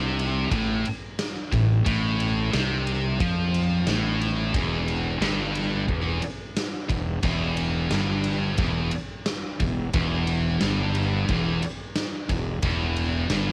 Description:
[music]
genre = hard rock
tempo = 89 BPM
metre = 4/4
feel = straight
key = E minor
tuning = A4 = 440 Hz
[part]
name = scooped high-gain guitar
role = riff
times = 0.0-13.5 s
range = E2 to F3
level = -30 LUFS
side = equal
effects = distortion, cassette tape
[part]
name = sludgy distorted guitar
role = riff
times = 0.0-13.5 s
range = E2 to F3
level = -30 LUFS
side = equal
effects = overdrive, cassette tape
[part]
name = fuzz fingered electric bass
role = bass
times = 0.0-13.5 s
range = E1 to F2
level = -31 LUFS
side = equal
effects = overdrive
[part]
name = huge arena drum kit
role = drums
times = 0.2-13.5 s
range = kick drum, ride cymbal, snare drum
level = -32 LUFS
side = equal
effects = cassette tape
[sound]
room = light reverb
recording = home recording on cassette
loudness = -25 LUFS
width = mono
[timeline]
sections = 0.0-13.5 A section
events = none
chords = 0.0 Am; 4.5 Em

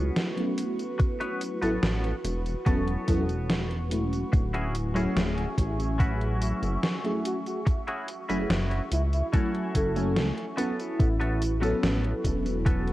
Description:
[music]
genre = vaporwave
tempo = 72 BPM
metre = 4/4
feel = straight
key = A major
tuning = A4 = 441 Hz
[part]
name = FM electric piano with soft pad layer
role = accompaniment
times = 0.0-12.9 s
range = F#3 to G#5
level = -31 LUFS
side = equal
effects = ensemble chorus, cassette tape, tape echo
[part]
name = warbly tape-like pad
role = sustained chords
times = 0.0-12.9 s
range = F#4 to C#6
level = -38 LUFS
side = right 1 dB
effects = chorus, built-in reverb, phaser, vintage 12-bit sampler grit
[part]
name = clean electric guitar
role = riff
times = 0.0-12.9 s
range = B3 to B4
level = -36 LUFS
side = left 1 dB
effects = analog chorus, tape echo
[part]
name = chorused synth bass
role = bass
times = 0.0-12.9 s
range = D1 to C#2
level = -28 LUFS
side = equal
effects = tube saturation
[part]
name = gated 80s digital drum machine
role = drums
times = 0.2-12.9 s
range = hi-hat, snare drum, tambourine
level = -31 LUFS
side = equal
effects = gated reverb, gated reverb snare
[part]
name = electronic kick drum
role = drums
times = 1.0-12.8 s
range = none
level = -24 LUFS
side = equal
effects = overdrive
[part]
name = warm velvety synth lead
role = melody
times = 7.3-12.0 s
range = E4 to A4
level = -34 LUFS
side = equal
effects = chorus, tape echo
[sound]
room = light reverb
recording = worn, warbling old tape, cassette tape, warbly pitch drift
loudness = -25 LUFS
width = side -16 dB against mid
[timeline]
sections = 0.0-12.9 A section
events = none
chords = 0.0 A69; 4.3 Dmaj9#11; 7.7 F#m7; 10.6 A69

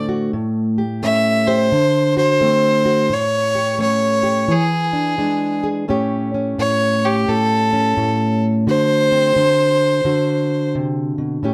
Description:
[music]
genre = acoustic country blues, solo or duo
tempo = 86 BPM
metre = 4/4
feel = swing 64% on 8ths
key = A mixolydian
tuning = A4 = 441 Hz
[part]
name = clear fiddle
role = melody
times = 0.0-10.7 s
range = G4 to E5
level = -19 LUFS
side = equal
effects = slapback echo
[part]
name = fingerpicked plugged-in steel-string acoustic guitar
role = accompaniment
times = 0.0-11.5 s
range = A2 to C#5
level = -21 LUFS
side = equal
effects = none
[sound]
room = moderate small room reverb, RT60 0.5 s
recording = close, detailed microphones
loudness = -17 LUFS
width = mono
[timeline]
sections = 0.0-5.9 A section; 5.9-11.5 A section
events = none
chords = 0.3 A7; 1.7 D7; 3.1 A7; 4.5 E7; 5.9 A7; 8.7 D7

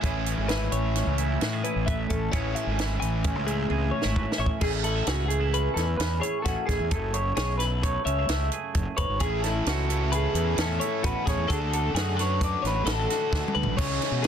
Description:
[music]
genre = math rock and midwest emo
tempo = 131 BPM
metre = 5/4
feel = straight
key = A major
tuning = A4 = 440 Hz
[part]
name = twangy electric guitar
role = accompaniment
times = 0.0-14.3 s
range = F#2 to B4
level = -35 LUFS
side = right 8 dB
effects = none
[part]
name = twelve-string electric guitar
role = arpeggios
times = 0.0-14.3 s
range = E4 to G#5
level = -32 LUFS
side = left 8 dB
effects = harmonic tremolo
[part]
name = biting overdriven guitar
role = riff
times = 0.0-4.6, 9.2-14.3 s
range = A2 to A4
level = -32 LUFS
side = right 1 dB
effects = none
[part]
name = fuzz fingered electric bass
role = bass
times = 0.0-14.3 s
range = F#1 to B2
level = -28 LUFS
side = equal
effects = overdrive
[part]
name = compact cocktail drum kit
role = drums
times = 0.0-14.3 s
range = crash cymbal, hi-hat, kick drum, ride cymbal, snare drum, toms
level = -30 LUFS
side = right 1 dB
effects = soft clipping on snare
[part]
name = electric guitar through a small old amp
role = melody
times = 4.4-13.5 s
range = F#4 to E5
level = -30 LUFS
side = right 1 dB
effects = none
[sound]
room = little or no reverb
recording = dense, heavily limited modern master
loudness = -24 LUFS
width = side -8 dB against mid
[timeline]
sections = 0.0-4.6 A section; 4.6-13.8 B section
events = drum fill 3.7-4.6, 13.3-13.8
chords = 0.0 Amaj9; 4.6 Amaj7; 6.9 F#m9; 9.2 Amaj7; 11.5 D

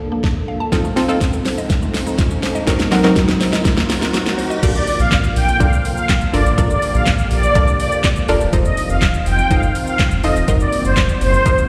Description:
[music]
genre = dance-pop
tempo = 123 BPM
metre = 4/4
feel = straight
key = Bb major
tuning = A4 = 440 Hz
[part]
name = sweeping resonant pad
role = sustained chords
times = 0.0-11.7 s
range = D3 to Bb4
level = -27 LUFS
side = equal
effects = chorus, sidechain pumping
[part]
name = riser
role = sound effects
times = 0.1-4.6 s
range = none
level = -31 LUFS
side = equal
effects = slapback echo
[part]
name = mallet-like synth pluck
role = arpeggios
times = 0.1-4.6 s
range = F3 to A5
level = -29 LUFS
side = equal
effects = chorus, sidechain pumping, slapback echo, tape echo
[part]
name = smooth R&B drum kit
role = drums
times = 0.2-11.7 s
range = crash cymbal, handclaps, hi-hat, kick drum, shaker, snare drum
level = -20 LUFS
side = equal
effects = slapback echo
[part]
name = analog pluck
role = accompaniment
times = 0.7-11.7 s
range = Gb3 to Eb5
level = -21 LUFS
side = equal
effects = chorus, sidechain pumping, slapback echo
[part]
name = sub bass with octave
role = bass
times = 4.6-11.6 s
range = Eb1 to C2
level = -20 LUFS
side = equal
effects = sidechain pumping
[part]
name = filtered supersaw swell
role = melody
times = 4.8-11.6 s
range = C5 to G5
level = -22 LUFS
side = equal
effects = sidechain pumping, slapback echo, tape echo
[sound]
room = light reverb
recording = live gig heard through the venue's PA, recital hall reverb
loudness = -16 LUFS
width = mono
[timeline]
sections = 0.0-4.6 A section; 4.6-11.7 B section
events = build-up 0.0-4.6; drum fill 0.0-4.6; riser 0.1-4.6; drop 4.6-11.7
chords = 0.0 Bbmaj7; 0.7 F7; 2.7 Ebm6/Gb; 4.6 Bbmaj7; 8.5 F7; 10.5 Ebm6

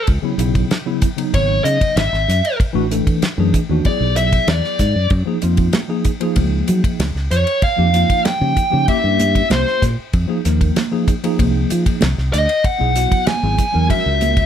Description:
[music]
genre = electric jazz fusion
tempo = 96 BPM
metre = 4/4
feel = straight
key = unclear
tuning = A4 = 438 Hz
[part]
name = dark smooth lead guitar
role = melody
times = 0.0-14.5 s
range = C5 to Ab5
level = -18 LUFS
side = equal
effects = overdrive, slapback echo, plate reverb
[part]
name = fingered electric bass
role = bass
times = 0.1-14.4 s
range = Ab1 to Gb3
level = -18 LUFS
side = equal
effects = none
[part]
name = damped 70s drum kit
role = drums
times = 0.1-14.5 s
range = hi-hat, kick drum, ride cymbal, snare drum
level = -20 LUFS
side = equal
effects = none
[part]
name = tine electric piano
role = accompaniment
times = 0.2-14.5 s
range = Db3 to Bb4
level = -21 LUFS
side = left 1 dB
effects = medium stereo tremolo
[part]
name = congas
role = percussion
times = 5.1-14.4 s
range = none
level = -24 LUFS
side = right 6 dB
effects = none
[sound]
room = light reverb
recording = none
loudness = -14 LUFS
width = side -9 dB against mid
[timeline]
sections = 0.0-14.5 A section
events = lead electric guitar solo 0.0-14.5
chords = 0.1 Dbm9; 2.6 Bm7 (rootless); 3.9 E9; 5.1 Gbmaj7 (rootless); 7.6 Gm7b5; 8.9 C7b9; 10.1 Fm7; 12.6 Dbm7 (rootless); 13.9 Gb9

